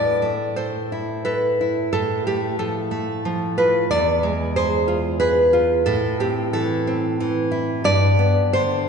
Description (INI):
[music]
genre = romantic piece for solo classical guitar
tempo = 90 BPM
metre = 3/4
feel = rubato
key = A minor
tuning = A4 = 439 Hz
[part]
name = nylon-string guitar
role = solo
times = 0.0-8.9 s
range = E2 to D5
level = -18 LUFS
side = equal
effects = none
[sound]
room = wet concert hall reverb, RT60 2.5 s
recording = recorded in a church or concert hall, nothing above 10.5 kHz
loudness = -18 LUFS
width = side -6 dB against mid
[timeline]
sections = 0.0-8.9 A section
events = none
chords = 0.0 Am; 1.9 G9/A; 3.9 E7b9; 5.9 Am; 7.9 G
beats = 0.57 1.25 | 1.92 2.58 3.24 | 3.90 4.55 5.21 | 5.87 6.54 7.20 | 7.86 8.53